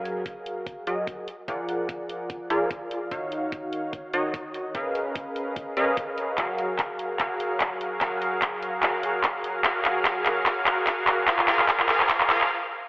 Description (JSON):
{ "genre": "future bass", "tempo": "147 BPM", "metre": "4/4", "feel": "swing 55% on 16ths, half-time", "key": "F# major", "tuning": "A4 = 439 Hz", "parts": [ { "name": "supersaw stab", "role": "riff", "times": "0.0-12.5 s", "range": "D#3 to F#5", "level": "-26 LUFS", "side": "equal", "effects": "sidechain pumping, low-pass filter, tape echo" }, { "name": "dubstep drum kit", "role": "drums", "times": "0.1-12.5 s", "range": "handclaps, hi-hat", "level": "-24 LUFS", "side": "equal", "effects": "none" }, { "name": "electronic kick drum", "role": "drums", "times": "0.3-12.2 s", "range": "none", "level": "-38 LUFS", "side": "equal", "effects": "none" } ], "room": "wet lush hall reverb, RT60 1.8 s, digital ambience", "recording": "high-pass filter, telephone sound", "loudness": "-23 LUFS", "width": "side -23 dB against mid", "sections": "0.0-12.9 A section", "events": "build-up 0.0-12.9; filter sweep on supersaw synth 0.0-12.9; filter sweep 0.0-12.9; drum fill 6.4-12.5; stop 12.5-12.9", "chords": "0.0 F#maj9; 1.3 A#7b13/E#; 3.1 D#m9; 4.7 C#13; 6.4 F#maj9; 11.3 Fmadd11" }